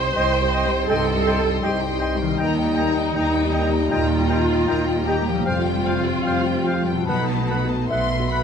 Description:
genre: cinematic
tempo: 72-82 BPM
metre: 4/4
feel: rubato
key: unclear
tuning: A4 = 442 Hz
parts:
  - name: warm symphonic violin section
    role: melody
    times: 0.0-8.4 s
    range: F5 to C6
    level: -30 LUFS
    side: left 4 dB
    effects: none
  - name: warm studio violin section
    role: second line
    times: 0.0-8.4 s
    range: G4 to C6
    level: -33 LUFS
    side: left 2 dB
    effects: none
  - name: felt-muted upright piano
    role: accompaniment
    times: 0.0-8.4 s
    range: B1 to E5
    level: -28 LUFS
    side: left 4 dB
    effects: none
  - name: warm studio viola section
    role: accompaniment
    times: 0.0-7.9 s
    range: Eb4 to C5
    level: -24 LUFS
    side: right 1 dB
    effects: none
  - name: mellow French horn section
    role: sustained chords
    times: 0.0-8.4 s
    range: G3 to Eb4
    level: -28 LUFS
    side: left 4 dB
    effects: none
  - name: concert harp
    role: arpeggios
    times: 0.0-8.4 s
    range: B2 to Eb5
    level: -31 LUFS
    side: left 9 dB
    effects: none
  - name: rich studio cello section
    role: bass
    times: 0.0-8.4 s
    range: C2 to B2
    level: -28 LUFS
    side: right 3 dB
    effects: none
  - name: warm studio double bass section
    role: bass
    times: 0.0-8.4 s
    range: F1 to Eb2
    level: -27 LUFS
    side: right 4 dB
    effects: none
  - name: clear oboe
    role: second line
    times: 0.2-8.4 s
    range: F5 to G5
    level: -33 LUFS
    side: right 1 dB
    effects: none
  - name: mellow hollow silver concert flute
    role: second line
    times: 0.2-8.4 s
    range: E5 to A5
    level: -33 LUFS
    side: left 3 dB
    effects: none
  - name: warm clarinet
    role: second line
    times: 0.2-8.4 s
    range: B4 to Eb5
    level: -32 LUFS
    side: right 1 dB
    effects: none
room: moderate scoring stage reverb, RT60 1.6 s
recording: none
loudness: -18 LUFS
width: side -7 dB against mid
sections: 0.0-8.4 A section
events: none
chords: 0.0 Cm; 2.4 Eb; 5.5 Fsus2; 7.1 B7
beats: 0.16 0.90 1.64 | 2.40 3.16 3.92 4.69 | 5.47 6.26 7.08 7.91

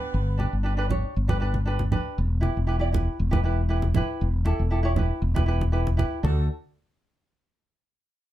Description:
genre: calypso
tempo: 118 BPM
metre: 4/4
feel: straight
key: unclear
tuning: A4 = 441 Hz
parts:
  - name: mellow horn section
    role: second line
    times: 0.0-0.5, 6.2-6.5 s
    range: A3 to B4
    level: -37 LUFS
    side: right 5 dB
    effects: none
  - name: tenor ukulele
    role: accompaniment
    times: 0.0-6.5 s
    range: D4 to D5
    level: -30 LUFS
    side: right 1 dB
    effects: none
  - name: mellow fretless electric bass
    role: bass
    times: 0.1-6.5 s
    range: E1 to D2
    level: -24 LUFS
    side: equal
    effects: analog chorus
  - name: congas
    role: percussion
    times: 0.4-6.5 s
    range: none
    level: -29 LUFS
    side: right 2 dB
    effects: none
room: little or no reverb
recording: none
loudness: -22 LUFS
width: side -14 dB against mid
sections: 0.0-6.2 A section; 6.2-8.3 B section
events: none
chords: 0.0 G; 2.2 Em; 6.2 D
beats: | 0.15 0.66 1.16 1.67 | 2.18 2.69 3.19 3.70 | 4.21 4.72 5.22 5.73 | 6.24

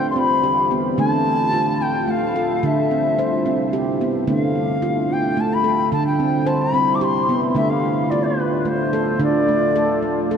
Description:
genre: world meditative, meditative tuned percussion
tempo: 109 BPM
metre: 3/4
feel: straight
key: D dorian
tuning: A4 = 441 Hz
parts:
  - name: bright reedy bansuri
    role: melody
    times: 0.0-10.3 s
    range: B4 to D6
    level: -21 LUFS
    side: left 3 dB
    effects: tape echo
  - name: deep dark ambient pad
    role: sustained chords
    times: 0.0-10.4 s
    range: C3 to G4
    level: -24 LUFS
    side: equal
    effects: chorus, built-in reverb
  - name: handpan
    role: arpeggios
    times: 0.0-10.4 s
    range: D3 to C5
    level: -20 LUFS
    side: right 2 dB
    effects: tape echo
room: wet huge ambient reverb, RT60 7.8 s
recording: dreamy mix soaked in reverb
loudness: -17 LUFS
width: side -7 dB against mid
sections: 0.0-10.4 A section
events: none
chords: 0.0 C; 1.0 Dm; 2.6 C; 4.3 Dm; 5.9 C; 7.6 Dm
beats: 0.43 | 0.98 1.53 2.08 | 2.63 3.18 3.73 | 4.28 4.82 5.37 | 5.92 6.47 7.02 | 7.57 8.12 8.67 | 9.22 9.77 10.31

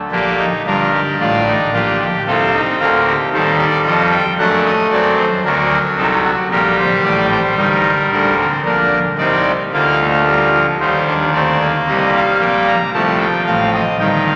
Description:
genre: classical, baroque-style 4-part fugue for pipe organ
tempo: 56 BPM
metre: 4/4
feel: straight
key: G minor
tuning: A4 = 440 Hz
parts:
  - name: pipe organ, trumpet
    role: solo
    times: 0.1-14.4 s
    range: G1 to Bb5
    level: -15 LUFS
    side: equal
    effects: none
room: wet cathedral reverb, RT60 5.8 s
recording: none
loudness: -15 LUFS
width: mono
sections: 0.1-8.6 A section; 8.6-14.4 B section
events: none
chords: 0.1 Gm; 2.3 Am7b5/C; 4.4 D7/F#; 6.5 Gm; 8.6 Bb; 12.9 Adim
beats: | 0.12 1.19 2.26 3.32 | 4.38 5.43 6.51 7.57 | 8.65 9.73 10.80 11.87 | 12.93 14.00

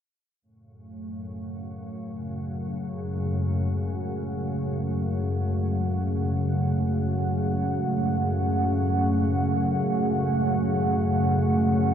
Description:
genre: dark ambient drone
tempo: free time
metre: none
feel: none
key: unclear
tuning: A4 = 439 Hz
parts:
  - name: dark analog pad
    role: sustained chords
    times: 0.8-11.9 s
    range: A3 to F#5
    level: -27 LUFS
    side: right 2 dB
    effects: chorus
  - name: organ-like drone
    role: drone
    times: 1.1-11.9 s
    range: F#2 to C#3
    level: -26 LUFS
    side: left 1 dB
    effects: ensemble chorus, built-in reverb
room: wet cathedral reverb, RT60 5.3 s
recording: in a vast, echoing space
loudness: -23 LUFS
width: side -8 dB against mid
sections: 0.4-11.9 A section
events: none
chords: 0.4 F#madd9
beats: free time

